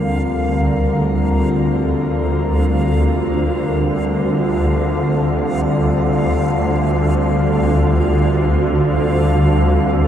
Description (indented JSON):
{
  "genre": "dark ambient drone",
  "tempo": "free time",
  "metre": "none",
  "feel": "none",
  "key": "unclear",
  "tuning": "A4 = 440 Hz",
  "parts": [
    { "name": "deep dark ambient pad", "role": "sustained chords", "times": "0.0-10.1 s", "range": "D3 to Bb4", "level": "-20 LUFS", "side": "equal", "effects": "chorus, built-in reverb, shimmer reverb" },
    { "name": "gamelan-type bossed gongs", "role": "arpeggios", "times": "0.0-5.2 s", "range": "none", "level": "barely audible", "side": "none", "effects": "none" },
    { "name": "swarming drone", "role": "drone", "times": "0.0-10.1 s", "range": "D2 to D3", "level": "-16 LUFS", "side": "equal", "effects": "built-in reverb" },
    { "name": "backwards swelling texture", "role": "texture", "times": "0.0-10.1 s", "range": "F5", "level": "-28 LUFS", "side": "left 1 dB", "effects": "built-in reverb, shimmer reverb" }
  ],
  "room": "wet huge ambient reverb, RT60 8.4 s",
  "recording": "none",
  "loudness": "-14 LUFS",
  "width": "side -10 dB against mid",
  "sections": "0.0-10.1 A section",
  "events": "none",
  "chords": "0.0 Gm; 7.2 Dm"
}